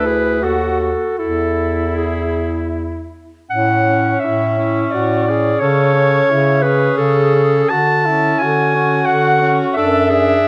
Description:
classical, lyrical piece for single-reed quartet; 76-91 BPM; 3/4; rubato; A major; A4 = 440 Hz
clear clarinet; melody; 0.0-10.5 s; G#4 to A5; -19 LUFS; equal
bright alto saxophone; second line; 0.0-10.5 s; C#4 to F#4; -25 LUFS; equal
mellow tenor saxophone; accompaniment; 0.0-10.5 s; C#4 to A4; -23 LUFS; equal
clear bass clarinet; bass; 0.0-10.5 s; D2 to D3; -21 LUFS; equal
moderate scoring stage reverb, RT60 1.5 s; close, detailed microphones; -16 LUFS; mono
0.0-3.5 A section; 3.5-10.5 B section
0.4 D#dim; 1.2 E; 3.5 A; 5.6 A/C#; 7.7 Dmaj7; 9.8 D/F#

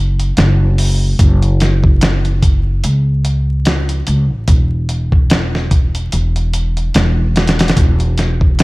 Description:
trip hop; 73 BPM; 4/4; swing 57% on 16ths; A4 = 440 Hz
upright bass; bass; 0.0-8.6 s; E1 to C#2; -14 LUFS; equal; tube saturation
dusty soul sampler-style drum kit; drums; 0.2-8.6 s; hi-hat, kick drum, snare drum; -14 LUFS; equal
little or no reverb; vinyl crackle; -11 LUFS; side -23 dB against mid
0.0-8.6 A section

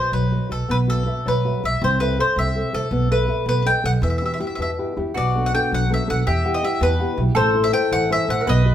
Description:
italian folk, Italian serenade; 108 BPM (dotted quarters); 6/8; rubato; A4 = 440 Hz
bowl-back mandolin; melody; 0.0-8.7 s; A4 to G5; -22 LUFS; left 1 dB
nylon-string guitar; accompaniment; 0.0-8.7 s; B2 to F#5; -25 LUFS; left 2 dB
upright bass; bass; 0.1-8.7 s; A1 to E2; -21 LUFS; right 1 dB
mandolin; second line; 5.1-8.7 s; F#4 to B4; -24 LUFS; left 1 dB
moderate large studio reverb, RT60 1.1 s; band playing live in one room; -18 LUFS; side -10 dB against mid
0.0-8.7 A section
0.0 B; 0.7 Bsus4; 1.8 Am/C; 2.9 B7sus4; 3.5 B7; 4.0 Emadd9; 5.2 Bm7; 6.3 Emadd9; 7.4 Am

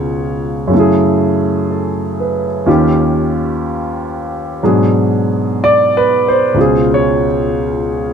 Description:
jazz ballad; 62 BPM; 4/4; swing 66% on 8ths; F# minor; A4 = 440 Hz
warm grand piano; solo; 0.0-8.1 s; C#2 to D5; -12 LUFS; equal
moderate club reverb, RT60 0.6 s; -12 LUFS; side -7 dB against mid
0.0-8.1 A section
0.0 C#7; 0.7 F#m9; 2.7 D#7; 4.6 G#m7b5; 6.6 C#7

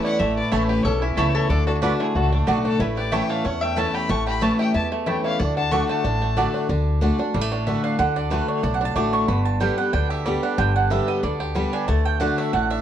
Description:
bluegrass; 185 BPM; 4/4; swing 53% on 8ths; D major; A4 = 441 Hz
bluegrass banjo; melody; 0.0-12.8 s; D3 to G4; -28 LUFS; right 4 dB
clear fiddle; melody; 0.0-6.6 s; D4 to C#6; -29 LUFS; left 4 dB
lap resonator guitar; second line; 0.0-6.6 s; C#4 to A5; -28 LUFS; left 2 dB
picked steel-string acoustic guitar; accompaniment; 0.0-12.8 s; E2 to G4; -24 LUFS; left 2 dB
upright bass; bass; 0.2-12.8 s; G1 to E2; -24 LUFS; equal
mandolin; stabs; 0.5-12.8 s; A3 to D6; -26 LUFS; right 5 dB
moderate studio reverb, RT60 0.8 s; worn, warbling old tape, cassette tape, warbly pitch drift; -19 LUFS; side -10 dB against mid
0.0-6.7 A section; 6.7-12.8 B section
mandolin solo 6.7-12.8
0.0 A; 1.5 D; 2.8 A; 5.4 D; 9.3 G; 11.9 D

